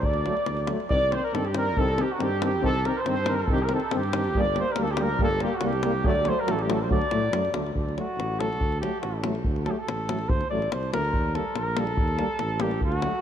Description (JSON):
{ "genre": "balkan folk, Balkan brass band", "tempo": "141 BPM", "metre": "2/4", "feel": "straight", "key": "D phrygian dominant", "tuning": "A4 = 438 Hz", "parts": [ { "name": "warm flugelhorn", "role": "melody", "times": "0.0-13.2 s", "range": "F#4 to D5", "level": "-28 LUFS", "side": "equal", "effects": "none" }, { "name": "dark trumpet", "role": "second line", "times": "0.0-7.5 s", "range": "F#4 to D5", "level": "-32 LUFS", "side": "right 3 dB", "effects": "none" }, { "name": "dark tuba", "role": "bass", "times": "0.0-13.1 s", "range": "G1 to A2", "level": "-30 LUFS", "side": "equal", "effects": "none" }, { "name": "davul", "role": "percussion", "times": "0.0-13.1 s", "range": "none", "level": "-30 LUFS", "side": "left 1 dB", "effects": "none" }, { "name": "clear French horn", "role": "accompaniment", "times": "0.3-13.1 s", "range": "A3 to C4", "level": "-32 LUFS", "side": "left 6 dB", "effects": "none" }, { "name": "warm euphonium", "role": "accompaniment", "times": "0.3-13.1 s", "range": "Eb3 to G3", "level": "-33 LUFS", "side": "right 6 dB", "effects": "none" } ], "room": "moderate cathedral reverb, RT60 6.2 s", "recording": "dreamy mix soaked in reverb", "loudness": "-23 LUFS", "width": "side -9 dB against mid", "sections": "0.9-7.8 A section; 7.8-13.2 B section", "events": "flugelhorn solo 7.8-13.2", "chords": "0.0 D; 0.9 Cm; 4.4 Gm; 6.1 D; 11.1 Eb", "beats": "| 0.05 0.48 | 0.91 1.35 | 1.78 2.21 | 2.64 3.07 | 3.50 3.92 | 4.35 4.78 | 5.21 5.63 | 6.06 6.48 | 6.91 7.33 | 7.76 8.18 | 8.61 9.03 | 9.45 9.88 | 10.30 10.72 | 11.14 11.56 | 11.98 12.40 | 12.82" }